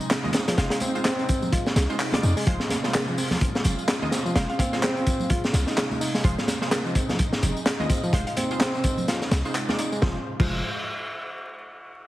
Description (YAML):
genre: breakbeat, breaks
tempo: 127 BPM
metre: 4/4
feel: swing 58% on 16ths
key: F minor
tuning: A4 = 440 Hz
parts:
  - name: lush unison pad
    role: sustained chords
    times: 0.0-10.2 s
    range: C3 to F4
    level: -34 LUFS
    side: equal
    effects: chorus, phaser, sidechain pumping
  - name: electronic tambourine and handclaps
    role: drums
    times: 0.0-10.0 s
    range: none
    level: -32 LUFS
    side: equal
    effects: none
  - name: crunchy breakbeat drum kit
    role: drums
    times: 0.1-10.5 s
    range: crash cymbal, hi-hat, kick drum, snare drum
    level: -25 LUFS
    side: equal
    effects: none
  - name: overdriven reed electric piano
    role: riff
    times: 0.2-10.6 s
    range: Eb3 to F4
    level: -30 LUFS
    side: equal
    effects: ping-pong delay
  - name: orchestra-hit-like synth stab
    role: stabs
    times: 0.2-10.6 s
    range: Ab3 to Eb5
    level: -34 LUFS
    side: right 1 dB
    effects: built-in reverb, ping-pong delay
  - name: congas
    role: percussion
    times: 0.2-9.8 s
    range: none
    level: -34 LUFS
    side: right 2 dB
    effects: none
  - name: mallet-like synth pluck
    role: melody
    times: 0.6-0.8, 4.4-5.0, 8.1-8.3 s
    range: F5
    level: -36 LUFS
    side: left 1 dB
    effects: chorus, small speaker sound, cassette tape, ping-pong delay
  - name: warm 808-style bass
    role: bass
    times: 0.6-10.6 s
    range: F1 to F2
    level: -24 LUFS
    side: equal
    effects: none
room: light reverb, studio reverb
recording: heavily compressed radio sound, vinyl crackle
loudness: -22 LUFS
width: side -15 dB against mid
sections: 0.0-10.0 A section; 10.0-11.9 B section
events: drop 0.0-10.0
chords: 0.0 Fm